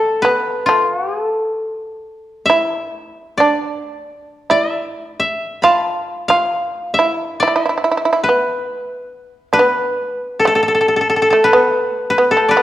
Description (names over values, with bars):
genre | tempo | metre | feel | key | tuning
japanese traditional, Japanese chamber music | 68 BPM | 4/4 | uneven beats, rubato | E in sen | A4 = 440 Hz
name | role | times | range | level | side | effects
koto | melody | 0.0-12.6 s | A4 to B5 | -16 LUFS | left 1 dB | none
shamisen | second line | 0.0-12.6 s | A3 to F4 | -17 LUFS | right 2 dB | none
room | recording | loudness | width
moderate recital hall reverb, RT60 1.6 s | worn, warbling old tape, cassette tape, warbly pitch drift | -14 LUFS | side -14 dB against mid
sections
0.0-12.6 A section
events
none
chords
none